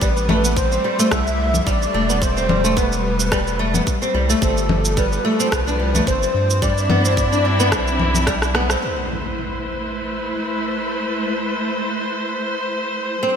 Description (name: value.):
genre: organic downtempo.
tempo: 109 BPM.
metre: 4/4.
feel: swing 55% on 16ths.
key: A minor.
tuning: A4 = 439 Hz.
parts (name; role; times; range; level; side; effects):
breathy flute-like synth lead; melody; 0.0-8.3 s; A4 to E5; -23 LUFS; equal; ensemble chorus, digital delay.
dark chamber string section; sustained chords; 0.0-13.4 s; F3 to C5; -24 LUFS; equal; sidechain pumping.
flamenco guitar; arpeggios; 0.0-8.8, 13.2-13.4 s; G3 to D4; -22 LUFS; equal; wide subtle chorus, ping-pong delay.
round analog bass; bass; 0.0-8.8 s; E1 to G2; -22 LUFS; equal; sidechain pumping.
electronic cabasa, congas and rim click; drums; 0.0-8.8 s; none; -24 LUFS; left 1 dB; studio ambience.
electronic kick drum; drums; 0.0-8.4 s; none; -23 LUFS; equal; studio ambience.
impact; sound effects; 8.8-11.0 s; none; -31 LUFS; equal; none.
room: moderate lush hall reverb, RT60 2.0 s.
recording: bright 1980s-style digital production.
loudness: -17 LUFS.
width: side -7 dB against mid.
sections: 0.0-8.8 A section; 8.8-13.4 B section.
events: drum fill 8.3-8.8; impact 8.8-11.0.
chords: 0.0 Am9; 4.4 G9sus4; 6.6 Cmaj9/G; 8.8 Amadd9.